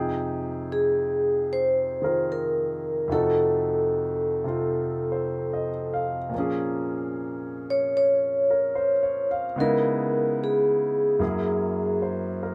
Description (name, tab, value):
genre	jazz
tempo	74 BPM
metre	4/4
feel	swing 67% on 8ths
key	F minor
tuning	A4 = 440 Hz
part	clear grand piano	accompaniment	0.0-12.5 s	F2 to G5	-30 LUFS	equal	none
part	vibraphone with medium mallets	melody	0.7-12.0 s	Ab4 to Db5	-26 LUFS	equal	none
room	light reverb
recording	close, detailed microphones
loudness	-25 LUFS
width	mono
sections	0.0-12.5 A section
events	none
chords	0.0 Fm9; 3.1 F7b9; 6.3 Bbm7; 9.6 Dbm7; 11.2 Gb9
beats	0.67 1.48 2.28 | 3.09 3.90 4.70 5.51 | 6.31 7.12 7.93 8.75 | 9.56 10.38 11.20 12.01